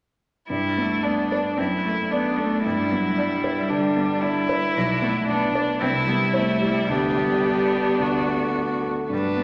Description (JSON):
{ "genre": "quick classical-period movement for piano quartet", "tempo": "112 BPM", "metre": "4/4", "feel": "rubato", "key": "G major", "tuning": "A4 = 440 Hz", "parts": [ { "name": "rich violin", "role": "melody", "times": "0.5-9.4 s", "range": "D4 to B4", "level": "-28 LUFS", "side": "equal", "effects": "none" }, { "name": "rich cello", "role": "second line", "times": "0.5-9.4 s", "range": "F#3 to D4", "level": "-28 LUFS", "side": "equal", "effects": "none" }, { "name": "warm concert grand piano", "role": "accompaniment", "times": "0.5-9.4 s", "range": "B1 to D5", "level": "-27 LUFS", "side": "equal", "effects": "none" }, { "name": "rich viola", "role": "accompaniment", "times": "1.0-9.4 s", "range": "D4 to G4", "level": "-31 LUFS", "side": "equal", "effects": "none" } ], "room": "wet concert hall reverb, RT60 2.2 s", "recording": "none", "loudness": "-23 LUFS", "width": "mono", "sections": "0.5-9.4 A section", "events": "none", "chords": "0.5 G; 1.6 D/F#; 2.6 G; 4.8 Bm; 5.8 C; 6.9 G/D; 8.0 D" }